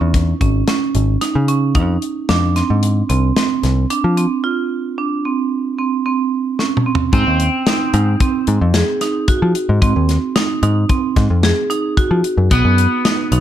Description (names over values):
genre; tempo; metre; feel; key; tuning
progressive instrumental, band music in an uneven meter; 112 BPM; 5/4; straight; Ab mixolydian from 7.1 s; A4 = 440 Hz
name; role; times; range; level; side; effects
marimba with medium hard mallets; arpeggios; 0.0-13.4 s; B3 to Ab4; -18 LUFS; right 5 dB; plate reverb
picked electric bass; bass; 0.0-13.4 s; Ab1 to F3; -15 LUFS; left 1 dB; none
modern studio drum kit; drums; 0.1-13.4 s; hi-hat, kick drum, snare drum, toms; -18 LUFS; left 1 dB; none
electric guitar at the edge of break-up; second line; 7.1-13.4 s; B3 to C4; -21 LUFS; left 2 dB; wide subtle chorus, plate reverb
room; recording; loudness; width
light reverb; dark, warm production; -14 LUFS; side -11 dB against mid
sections
0.0-7.1 A section; 7.1-13.4 B section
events
break 4.4-7.1; drum fill 6.6-7.1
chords
0.0 Dbmadd9; 1.8 F7(no3); 4.4 Csus24; 5.5 N.C.; 7.1 Ab; 12.5 B